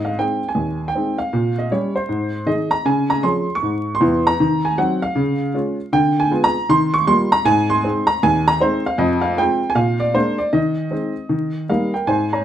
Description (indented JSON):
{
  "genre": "jazz, stride piano",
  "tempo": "156 BPM",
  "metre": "4/4",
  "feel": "swing 64% on 8ths",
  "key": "Ab major",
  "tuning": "A4 = 444 Hz",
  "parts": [
    { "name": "dark grand piano", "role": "solo", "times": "0.0-12.4 s", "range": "Eb2 to Db6", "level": "-16 LUFS", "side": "equal", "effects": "none" }
  ],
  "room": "moderate club reverb, RT60 0.7 s",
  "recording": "vinyl crackle",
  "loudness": "-16 LUFS",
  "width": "side -10 dB against mid",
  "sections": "0.0-12.1 A section",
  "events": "none",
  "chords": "0.0 Ab; 1.3 Gdim/Bb; 2.1 Ab5; 2.9 Db; 4.4 Cdim/Eb; 5.2 Db; 5.9 Ddim7; 6.7 Ebadd9; 7.5 Ab; 9.0 Fm; 9.8 Bb7; 10.5 Ab/Eb; 11.3 Eb"
}